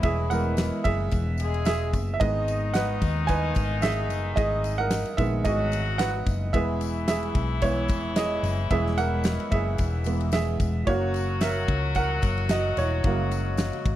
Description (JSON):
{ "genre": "piano-driven pop", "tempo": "111 BPM", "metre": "4/4", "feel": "swing 56% on 16ths", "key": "unclear", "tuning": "A4 = 440 Hz", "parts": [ { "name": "muted French horn section", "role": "second line", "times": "0.0-14.0 s", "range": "D#3 to G#4", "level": "-33 LUFS", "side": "left 6 dB", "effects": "none" }, { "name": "warm baby grand piano", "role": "accompaniment", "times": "0.0-14.0 s", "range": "C#3 to G#5", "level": "-27 LUFS", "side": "right 3 dB", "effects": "none" }, { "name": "hollow-body short-scale fingered electric bass", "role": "bass", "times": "0.0-14.0 s", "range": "E1 to D#2", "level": "-27 LUFS", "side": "left 1 dB", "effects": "none" }, { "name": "huge arena drum kit", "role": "drums", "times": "0.0-14.0 s", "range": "kick drum, ride cymbal, snare drum", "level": "-29 LUFS", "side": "equal", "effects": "none" }, { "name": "tambourine", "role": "percussion", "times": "0.3-13.7 s", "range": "none", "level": "-46 LUFS", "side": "left 25 dB", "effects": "none" } ], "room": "light reverb", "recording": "dry, close 1970s-style studio recording", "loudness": "-23 LUFS", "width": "side -13 dB against mid", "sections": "0.0-14.0 A section", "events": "grand piano solo 0.0-14.0", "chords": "0.0 E; 2.2 G#m; 6.5 E; 10.9 F#", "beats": "| 0.03 0.58 1.12 1.66 | 2.20 2.74 3.29 3.83 | 4.37 4.91 5.45 6.00 | 6.54 7.08 7.62 8.16 | 8.71 9.25 9.79 10.33 | 10.87 11.42 11.96 12.50 | 13.04 13.58" }